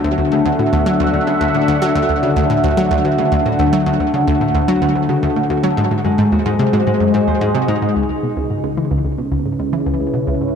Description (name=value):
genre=ambient, sequencer-driven space music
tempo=110 BPM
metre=4/4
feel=straight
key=unclear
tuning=A4 = 440 Hz
part: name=sweeping resonant pad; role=sustained chords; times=0.0-10.6 s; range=C#3 to F#5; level=-17 LUFS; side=equal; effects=chorus
part: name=concert harp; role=arpeggios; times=0.0-10.4 s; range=G#3 to B#4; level=-22 LUFS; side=left 6 dB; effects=auto-pan, tape echo
part: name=analog pluck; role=riff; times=0.0-10.5 s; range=C#2 to F#3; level=-18 LUFS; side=right 1 dB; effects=chorus, tape echo
room=wet spring reverb, RT60 2.4 s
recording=echo-heavy mix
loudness=-14 LUFS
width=side -7 dB against mid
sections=0.0-8.0 A section; 8.0-10.6 B section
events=filter sweep on synth arpeggio sound 8.0-10.6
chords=0.0 Dmaj7; 5.8 G#7; 8.0 C#m7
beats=0.32 0.86 | 1.41 1.96 2.50 3.05 | 3.59 4.14 4.68 5.23 | 5.77 6.32 6.87 7.41 | 7.96 8.50 9.05 9.59 | 10.14